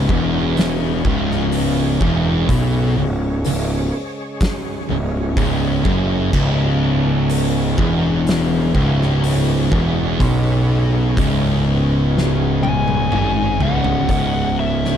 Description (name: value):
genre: stoner and doom metal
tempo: 62 BPM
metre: 4/4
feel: straight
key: C# minor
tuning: A4 = 440 Hz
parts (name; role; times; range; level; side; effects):
- bright tonewheel organ; sustained chords; 0.0-15.0 s; C#3 to C#4; -30 LUFS; equal; slow rotary speaker, overdrive, chorus vibrato
- sludgy distorted guitar; riff; 0.0-14.1 s; C#2 to B2; -25 LUFS; equal; overdrive
- thick fuzz guitar; riff; 0.0-15.0 s; C#2 to B2; -21 LUFS; left 8 dB; distortion
- thick fuzz guitar; riff; 0.0-15.0 s; C#2 to B2; -22 LUFS; right 9 dB; distortion
- fuzz picked electric bass; bass; 0.0-15.0 s; C#1 to B1; -21 LUFS; equal; overdrive, tube saturation
- oversized low-tuned drum kit; drums; 0.1-15.0 s; crash cymbal, hi-hat, kick drum, snare drum, toms; -23 LUFS; equal; none
- fuzz lead guitar; melody; 12.6-15.0 s; E5 to G#5; -22 LUFS; left 3 dB; wah, distortion, slapback echo
room: little or no reverb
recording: none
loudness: -15 LUFS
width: side -9 dB against mid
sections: 0.0-14.1 A section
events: drum fill 12.1-14.1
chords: 0.0 C#m